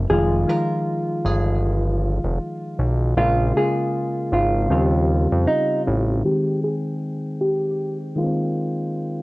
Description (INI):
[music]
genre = lo-fi hip hop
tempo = 78 BPM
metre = 4/4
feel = swing 57% on 16ths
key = Ab major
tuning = A4 = 437 Hz
[part]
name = soft electric-piano-like synth keys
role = accompaniment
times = 0.0-9.2 s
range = Db3 to G5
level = -23 LUFS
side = equal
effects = chorus, low-pass filter
[part]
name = fat analog bass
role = bass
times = 0.0-6.2 s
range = F1 to F2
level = -20 LUFS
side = equal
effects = none
[part]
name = hollow-body jazz guitar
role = melody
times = 0.1-8.0 s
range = Eb4 to Bb4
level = -22 LUFS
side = equal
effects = low-pass filter
[sound]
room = moderate studio reverb, RT60 0.6 s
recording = worn, warbling old tape, cassette tape, warbly pitch drift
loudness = -19 LUFS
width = side -21 dB against mid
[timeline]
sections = 0.0-6.2 A section; 6.2-9.2 B section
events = filter sweep 6.2-9.2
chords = 0.1 Fm9; 3.2 Bbm7; 4.7 Eb13; 6.2 Abmaj7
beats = | 0.08 0.85 1.62 2.39 | 3.16 3.93 4.70 5.47 | 6.24 7.01 7.78 8.54